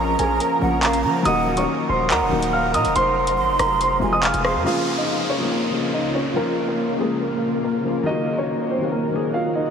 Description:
hip hop, drill; 141 BPM; 4/4; half-time; Bb minor; A4 = 438 Hz
dark concert grand piano; melody; 0.0-9.7 s; Ab3 to F6; -22 LUFS; right 1 dB; low-pass filter, diffuse ambient delay
mellow hollow jazz flute; second line; 0.0-4.6 s; F5 to C6; -26 LUFS; right 5 dB; diffuse ambient delay
felt-muted upright piano; accompaniment; 0.0-9.7 s; C3 to Ab4; -26 LUFS; left 5 dB; low-pass filter
granular cloud pad; sustained chords; 0.0-9.7 s; Db3 to Bb4; -27 LUFS; equal; built-in reverb, analog chorus
distorted 808-style bass; bass; 0.0-4.7 s; Eb1 to F3; -27 LUFS; equal; distortion
drill drum kit; drums; 0.2-4.5 s; handclaps, hi-hat, rim click; -27 LUFS; equal; vintage 12-bit sampler grit
downlifter; sound effects; 4.7-8.1 s; -31 LUFS; equal
wet huge ambient reverb, RT60 7.4 s; dreamy mix soaked in reverb; -18 LUFS; side -7 dB against mid
0.0-4.7 A section; 4.7-9.7 B section
0.0 Bbm; 1.3 Ebm; 3.0 Fm; 4.7 Bbm; 8.1 Ebm

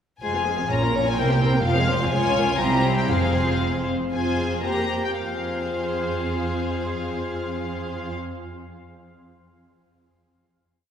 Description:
quick classical-period movement for string orchestra; 108-128 BPM; 2/4; rubato; F minor; A4 = 440 Hz
rich symphonic violin section; melody; 0.2-8.1 s; F5 to Bb5; -28 LUFS; left 4 dB
warm chamber violin section; second line; 0.2-8.1 s; Db4 to F5; -27 LUFS; left 2 dB
dark symphonic viola section; accompaniment; 0.2-8.1 s; F3 to Ab4; -28 LUFS; equal
dark symphonic double bass section; bass; 0.2-3.9 s; F1 to Db2; -28 LUFS; right 2 dB
warm chamber cello section; bass; 0.2-8.1 s; C2 to C3; -28 LUFS; right 2 dB
wet church reverb, RT60 3.1 s; recorded in a church or concert hall; -21 LUFS; side -8 dB against mid
0.2-4.1 A section; 4.1-5.2 coda; 5.2-7.4 final chord
slowing down 2.6-5.2
0.2 Fm; 0.7 Bbm; 1.2 C7; 1.6 Fm; 2.1 Db; 2.6 C7; 3.1 Fm; 4.6 C5/F; 5.2 Fm

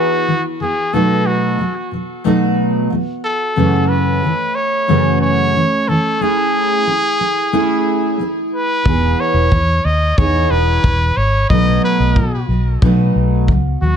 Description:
acoustic pop; 91 BPM; 4/4; straight; E major; A4 = 435 Hz
bright trumpet; melody; 0.0-14.0 s; F#4 to D#5; -18 LUFS; equal; digital delay
fingerpicked steel-string acoustic guitar; accompaniment; 0.0-14.0 s; F#2 to G#4; -16 LUFS; equal; double-tracked left and right
vintage muted fingered electric bass; bass; 8.9-14.0 s; E1 to B2; -16 LUFS; equal
kick drum; drums; 8.9-13.6 s; -16 LUFS; equal
moderate studio reverb, RT60 0.5 s; -13 LUFS; side -8 dB against mid
0.0-14.0 A section
0.0 Emaj7; 0.9 B7; 3.6 F#m7; 6.2 Amaj7; 8.9 Emaj7; 11.5 B7

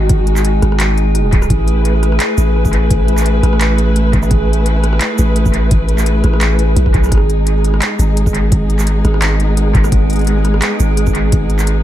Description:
half-time drum and bass; 171 BPM; 4/4; swing 54% on 16ths, half-time; G# phrygian; A4 = 441 Hz
dark studio string section; sustained chords; 0.0-11.8 s; G#3 to B4; -19 LUFS; equal; sidechain pumping
long sustained 808-style bass; bass; 0.0-11.8 s; G#1 to B1; -13 LUFS; equal
metallic inharmonic drone; texture; 0.0-11.8 s; B3 to G#4; -21 LUFS; equal; chorus, built-in reverb, phaser
electronic kick drum; drums; 0.1-11.4 s; -14 LUFS; equal; overdrive
organic electronic drum kit; drums; 0.1-11.8 s; handclaps, hi-hat, rim click, shaker; -22 LUFS; right 1 dB; analog delay
little or no reverb; echo-heavy mix; -11 LUFS; side -12 dB against mid
0.0-11.8 A section
0.0 G#5; 1.5 A5; 7.1 G#m

